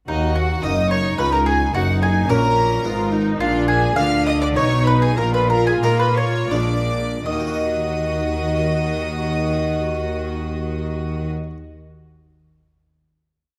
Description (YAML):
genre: classical, baroque-style concerto movement with solo episodes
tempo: 78-109 BPM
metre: 3/4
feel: straight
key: Eb minor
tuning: A4 = 440 Hz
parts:
  - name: clear chamber violin section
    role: melody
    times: 0.1-11.3 s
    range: Eb5 to F6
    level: -33 LUFS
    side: equal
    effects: none
  - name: mandolin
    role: melody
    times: 0.1-11.3 s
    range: Eb4 to F5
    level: -25 LUFS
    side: equal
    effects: none
  - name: rich chamber violin section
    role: second line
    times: 0.1-11.3 s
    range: Eb4 to F5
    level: -29 LUFS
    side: equal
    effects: none
  - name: clear symphonic viola section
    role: accompaniment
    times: 0.1-11.3 s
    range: Db4 to Gb4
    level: -28 LUFS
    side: equal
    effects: none
  - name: harpsichord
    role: accompaniment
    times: 0.1-11.6 s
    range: Db2 to Eb5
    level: -32 LUFS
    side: equal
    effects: none
  - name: clear studio cello section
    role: bass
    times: 0.1-11.3 s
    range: Db2 to Bb3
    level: -27 LUFS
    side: equal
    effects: none
  - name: rich chamber double bass section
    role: bass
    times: 0.1-11.3 s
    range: Gb1 to Bb2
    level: -25 LUFS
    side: equal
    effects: none
room: moderate concert hall reverb, RT60 1.9 s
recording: close, detailed microphones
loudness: -20 LUFS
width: mono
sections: 0.1-7.3 ritornello; 7.3-11.9 final chord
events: slowing down 2.6-7.3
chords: 0.1 Ebm; 1.2 Db; 1.7 Gb; 2.8 Fdim/Ab; 3.4 Bb; 4.6 B; 5.2 Bb7sus4; 6.5 Bb7; 7.3 Ebm